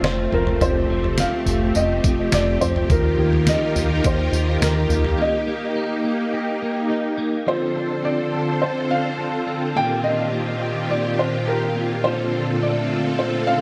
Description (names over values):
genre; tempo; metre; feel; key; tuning
dream pop; 105 BPM; 4/4; straight; Eb lydian; A4 = 440 Hz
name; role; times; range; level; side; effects
felt-muted upright piano; melody; 0.0-13.6 s; Bb4 to G5; -27 LUFS; equal; tape echo
string machine, violas; sustained chords; 0.0-13.6 s; Bb2 to C5; -26 LUFS; equal; ensemble chorus
electric guitar at the edge of break-up; arpeggios; 0.0-13.6 s; F3 to A4; -29 LUFS; equal; ensemble chorus, tape echo
chorused synth bass; bass; 0.0-5.1 s; F1 to Eb2; -25 LUFS; equal; none
detuned 8-bit digital drum machine; drums; 0.0-5.2 s; kick drum, snare drum, tambourine, toms; -26 LUFS; equal; none
room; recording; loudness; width
moderate recital hall reverb, RT60 1.5 s; none; -21 LUFS; mono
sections
0.0-7.5 A section; 7.5-13.6 B section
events
break 5.2-7.5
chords
0.0 F; 2.9 Ebadd9; 5.2 Eb; 7.5 Dm7; 9.8 Ebmaj7; 12.0 Bbmaj7